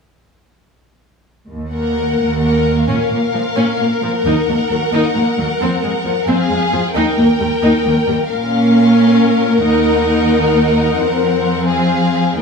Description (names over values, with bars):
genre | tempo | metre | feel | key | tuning
cinematic, heroic adventure film score | 88 BPM (dotted quarters) | 6/8 | straight | unclear | A4 = 440 Hz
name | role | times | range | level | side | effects
warm symphonic cello section | bass | 1.5-12.4 s | Eb2 to Bb2 | -16 LUFS | right 1 dB | none
warm symphonic violin section | melody | 1.7-12.4 s | F5 to G5 | -23 LUFS | left 4 dB | none
rich symphonic violin section | second line | 1.7-12.4 s | Ab4 to Bb4 | -18 LUFS | left 3 dB | none
rich studio viola section | accompaniment | 1.7-12.4 s | F3 to Eb4 | -18 LUFS | left 1 dB | none
room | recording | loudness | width
wet recital hall reverb, RT60 1.6 s | small room ambience, faint mains hum | -12 LUFS | side -5 dB against mid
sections
1.5-2.9 A section; 2.9-12.4 B section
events
build-up 2.9-12.4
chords
1.5 Ebm; 2.9 Bbm; 4.2 Ebm; 5.6 Fm; 7.0 Eb; 8.3 Bbm; 9.6 Ebm; 11.0 Fm